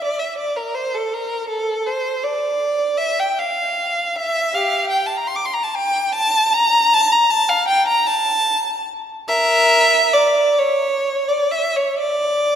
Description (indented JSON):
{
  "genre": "classical, free, expressive piece for unaccompanied violin",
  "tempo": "41-55 BPM (dotted quarters)",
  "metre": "6/8",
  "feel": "rubato",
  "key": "D minor",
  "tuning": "A4 = 439 Hz",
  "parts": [
    { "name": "rich violin", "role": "solo", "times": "0.0-12.6 s", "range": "G4 to D6", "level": "-16 LUFS", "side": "equal", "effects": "none" }
  ],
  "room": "wet church reverb, RT60 2.7 s",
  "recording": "none",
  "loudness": "-16 LUFS",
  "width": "side -8 dB against mid",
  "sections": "0.0-12.6 A section",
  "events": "none",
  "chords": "none"
}